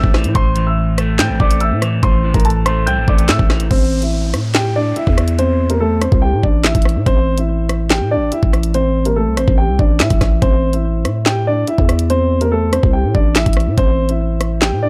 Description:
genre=hip hop, drill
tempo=143 BPM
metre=4/4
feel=half-time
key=A minor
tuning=A4 = 441 Hz
part: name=dark grand piano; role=melody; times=0.0-14.9 s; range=A3 to G6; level=-21 LUFS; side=equal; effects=low-pass filter, tape echo
part: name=electric guitar at the edge of break-up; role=accompaniment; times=0.0-3.7 s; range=A2 to C4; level=-24 LUFS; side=equal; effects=subtle chorus, low-pass filter
part: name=growling 808-style bass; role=bass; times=0.0-14.9 s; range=A1 to A2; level=-19 LUFS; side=equal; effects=none
part: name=drill drum kit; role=drums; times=0.0-14.7 s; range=handclaps, hi-hat, kick drum, rim click, snare drum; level=-18 LUFS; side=equal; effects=overdrive
part: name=downlifter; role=sound effects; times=3.7-7.1 s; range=none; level=-35 LUFS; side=equal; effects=none
room=little or no reverb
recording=dark, warm production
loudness=-15 LUFS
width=mono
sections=0.0-3.7 A section; 3.7-14.9 B section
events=none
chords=0.0 Am; 3.7 Am7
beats=| 0.35 0.77 1.19 1.61 | 2.03 2.45 2.87 3.29 | 3.71 4.13 4.55 4.97 | 5.38 5.80 6.22 6.64 | 7.06 7.48 7.90 8.32 | 8.74 9.16 9.58 10.00 | 10.42 10.84 11.26 11.68 | 12.10 12.52 12.94 13.36 | 13.78 14.20 14.62

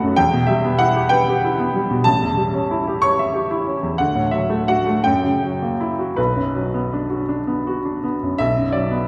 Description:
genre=classical, romantic character piece for solo piano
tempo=51-65 BPM (dotted quarters)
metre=6/8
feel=rubato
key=B minor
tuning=A4 = 440 Hz
part: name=clear baby grand piano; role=solo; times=0.0-9.1 s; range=A1 to C#6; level=-19 LUFS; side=equal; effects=none
room=wet concert hall reverb, RT60 2.2 s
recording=heard from further back in the room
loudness=-19 LUFS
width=mono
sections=0.0-8.4 A section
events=none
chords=0.2 Em; 2.1 A7; 4.0 D; 5.0 F#7b9; 6.2 Bm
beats=| 0.16 1.11 | 2.06 3.02 | 3.99 5.04 | 6.17 7.30 | 8.40

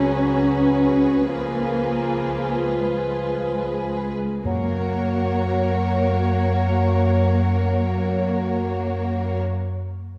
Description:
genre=classical, slow romantic movement for symphony orchestra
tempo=35-44 BPM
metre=4/4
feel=rubato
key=F# major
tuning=A4 = 440 Hz
part: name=warm studio violin section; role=melody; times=0.0-9.4 s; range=B4 to C#5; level=-33 LUFS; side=equal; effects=none
part: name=mellow clarinet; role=second line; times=0.0-9.4 s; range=B4 to C#5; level=-36 LUFS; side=equal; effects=none
part: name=silver concert flute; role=second line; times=0.0-9.4 s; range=F#5 to G#5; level=-35 LUFS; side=equal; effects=none
part: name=warm symphonic violin section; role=second line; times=0.0-9.4 s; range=G#4 to A#4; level=-36 LUFS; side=equal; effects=none
part: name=mellow bassoon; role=accompaniment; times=0.0-9.4 s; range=E#3 to F#3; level=-33 LUFS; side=equal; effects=none
part: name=warm studio viola section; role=accompaniment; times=0.0-9.4 s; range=E#4 to F#4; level=-35 LUFS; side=equal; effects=none
part: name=mellow French horn section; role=sustained chords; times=0.0-9.4 s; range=G#3 to C#4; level=-30 LUFS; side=equal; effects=none
part: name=rich chamber double bass section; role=bass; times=0.0-9.4 s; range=C#2 to F#2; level=-26 LUFS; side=equal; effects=none
part: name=rich studio cello section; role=bass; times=0.0-9.4 s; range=G#3 to C#4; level=-28 LUFS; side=equal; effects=none
part: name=timpani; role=percussion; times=4.4-9.4 s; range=F#2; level=-33 LUFS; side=equal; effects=none
room=wet scoring stage reverb, RT60 1.9 s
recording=heard from further back in the room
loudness=-22 LUFS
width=mono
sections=0.0-4.5 A section; 4.5-10.2 B section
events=slowing down 0.0-4.5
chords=0.0 C#7sus4; 1.3 C#7; 4.5 F#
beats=1.29 2.81 | 4.46 6.07 7.72 9.36

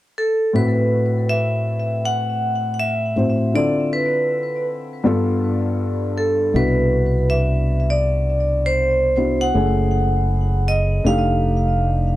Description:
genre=hip hop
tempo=80 BPM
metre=4/4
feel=swing 63% on 16ths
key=A dorian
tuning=A4 = 441 Hz
part: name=vibraphone with medium hard mallets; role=melody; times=0.2-12.1 s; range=A4 to F#5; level=-21 LUFS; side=right 1 dB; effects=tape echo
part: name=dark baby grand piano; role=accompaniment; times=0.5-12.2 s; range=G2 to C5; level=-21 LUFS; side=left 1 dB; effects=none
part: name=fingered electric bass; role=bass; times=6.5-12.2 s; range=F1 to C2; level=-19 LUFS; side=equal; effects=none
room=moderate small room reverb, RT60 0.5 s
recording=dark, warm production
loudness=-17 LUFS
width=side -15 dB against mid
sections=0.5-12.2 A section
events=none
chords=0.0 N.C.; 0.5 Am69; 3.5 Dm7; 5.0 G9; 6.5 Cmaj9#11; 9.5 F#m7; 11.0 F13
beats=| 0.54 1.29 2.04 2.79 | 3.54 4.29 5.04 5.79 | 6.54 7.29 8.04 8.79 | 9.54 10.29 11.04 11.79

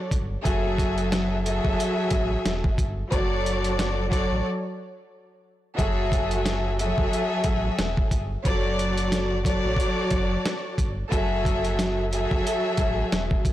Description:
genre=hip hop, boom-bap hip-hop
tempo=90 BPM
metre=4/4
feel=swing 58% on 16ths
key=F# minor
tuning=A4 = 439 Hz
part: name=rich studio string section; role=accompaniment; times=0.0-13.5 s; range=F#3 to E5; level=-25 LUFS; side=equal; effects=high-pass filter, low-pass filter
part: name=sub bass with octave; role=bass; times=0.1-13.5 s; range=E1 to A1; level=-29 LUFS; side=equal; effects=tube saturation
part: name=boom bap sampler-style drum kit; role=drums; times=0.1-13.5 s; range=hi-hat, kick drum, snare drum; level=-26 LUFS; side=equal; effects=none
room=little or no reverb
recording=blown-out, overdriven recording, overdrive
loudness=-22 LUFS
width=side -13 dB against mid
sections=0.0-13.5 A section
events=break 4.5-5.8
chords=0.5 F#m9; 3.1 F#m; 5.8 F#m9; 8.5 Dmaj7/F#; 11.1 F#m9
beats=| 0.45 1.12 1.78 2.45 | 3.12 3.78 4.45 5.12 | 5.78 6.45 7.12 7.78 | 8.45 9.12 9.78 10.45 | 11.12 11.78 12.45 13.12

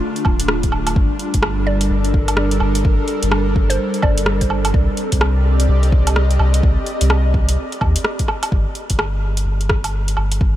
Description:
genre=future garage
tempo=127 BPM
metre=4/4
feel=swing 62% on 16ths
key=unclear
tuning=A4 = 440 Hz
part: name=airy breathy pad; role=sustained chords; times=0.0-8.5 s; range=D3 to Eb5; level=-23 LUFS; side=right 1 dB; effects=chorus, vintage 12-bit sampler grit, sidechain pumping
part: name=deep house drum kit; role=drums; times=0.2-10.4 s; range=hi-hat, rim click, woodblock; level=-23 LUFS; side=right 1 dB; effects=none
part: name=soft dub sub bass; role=bass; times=0.3-10.5 s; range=D1 to Eb2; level=-18 LUFS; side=equal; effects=sidechain pumping
part: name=electronic kick drum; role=drums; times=0.3-10.5 s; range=none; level=-18 LUFS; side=equal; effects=none
part: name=mallet-like synth pluck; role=melody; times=1.7-4.4 s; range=C5 to D5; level=-28 LUFS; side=right 1 dB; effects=chorus, tape echo
room=light reverb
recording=none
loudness=-15 LUFS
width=side -13 dB against mid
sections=0.0-8.5 A section; 8.5-10.6 B section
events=none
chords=0.0 Dm; 1.0 Gm9; 4.7 Cm9; 8.5 N.C.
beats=0.01 0.49 | 0.96 1.43 1.90 2.38 | 2.85 3.32 3.79 4.27 | 4.74 5.21 5.68 6.16 | 6.63 7.10 7.57 8.04 | 8.52 8.99 9.46 9.94 | 10.41

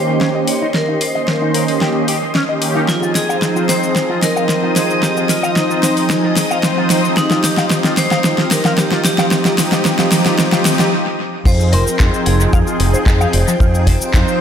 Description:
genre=nu-disco, nu disco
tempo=112 BPM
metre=4/4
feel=straight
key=F minor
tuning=A4 = 441 Hz
part: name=vibraphone with hard mallets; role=melody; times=0.0-14.4 s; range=Eb4 to Db5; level=-22 LUFS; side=equal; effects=dub echo
part: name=warm analog pad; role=accompaniment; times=0.0-14.4 s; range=Eb3 to C5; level=-18 LUFS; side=right 1 dB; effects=chorus, dub echo
part: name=string machine, full ensemble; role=sustained chords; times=0.0-14.4 s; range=F4 to Eb6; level=-25 LUFS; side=equal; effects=ensemble chorus, sidechain pumping
part: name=electric guitar with an envelope filter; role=riff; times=0.2-14.2 s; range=F3 to F5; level=-24 LUFS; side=left 3 dB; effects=wide subtle chorus, low-pass filter, dub echo
part: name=kick drum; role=drums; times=0.2-14.2 s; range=none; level=-16 LUFS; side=equal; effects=high-pass filter on kick, high-pass filter on snare, high-pass filter on room
part: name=pop drum kit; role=drums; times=0.2-14.4 s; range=cabasa, crash cymbal, handclaps, hi-hat, snare drum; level=-17 LUFS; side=equal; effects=dub echo
part: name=fingered electric bass with an envelope filter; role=bass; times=11.5-14.2 s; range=F1 to F2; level=-15 LUFS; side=equal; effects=none
room=moderate echo chamber reverb, RT60 1.6 s, studio ambience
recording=echo-heavy mix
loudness=-12 LUFS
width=side -8 dB against mid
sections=0.0-11.5 A section; 11.5-14.4 B section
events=build-up 0.0-11.5; drum fill 0.0-10.9; break 10.9-11.5; drop 11.5-14.4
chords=0.0 Eb7; 2.9 Fm7; 7.2 Eb; 11.5 Fm7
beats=0.21 | 0.75 1.28 1.82 2.35 | 2.89 3.42 3.96 4.50 | 5.03 5.57 6.10 6.64 | 7.17 7.71 8.25 8.78 | 9.32 9.85 10.39 10.93 | 11.46 12.00 12.53 13.07 | 13.60 14.14

